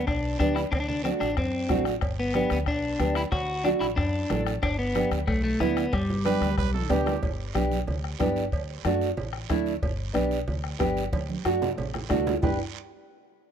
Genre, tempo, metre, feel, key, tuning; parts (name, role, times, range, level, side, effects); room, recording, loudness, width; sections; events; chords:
latin, cumbia; 184 BPM; 4/4; straight; G major; A4 = 440 Hz
electric guitar at the edge of break-up; melody; 0.0-6.9 s; G3 to F#4; -28 LUFS; left 1 dB; spring reverb
upright bass; bass; 0.0-12.6 s; G1 to F#2; -31 LUFS; equal
bombo; percussion; 0.1-12.5 s; -31 LUFS; left 2 dB
congas; percussion; 0.1-12.5 s; -35 LUFS; right 5 dB
cowbell and timbales; percussion; 0.1-12.5 s; -36 LUFS; right 6 dB
guiro; percussion; 0.1-12.5 s; -43 LUFS; right 15 dB
nylon-string guitar; accompaniment; 0.4-12.6 s; A3 to A4; -27 LUFS; right 1 dB
growling trumpet; second line; 6.3-7.2, 12.4-12.6 s; G4 to B4; -34 LUFS; right 13 dB
small room ambience; dry, close 1970s-style studio recording; -24 LUFS; side -8 dB against mid
0.0-7.2 A section; 7.2-12.4 B section; 12.4-13.5 C section
drum fill 6.7-7.2, 11.1-12.4
0.0 G; 0.7 D7; 2.0 G; 3.3 D; 4.6 G; 8.5 D; 9.8 G; 11.1 D; 12.4 G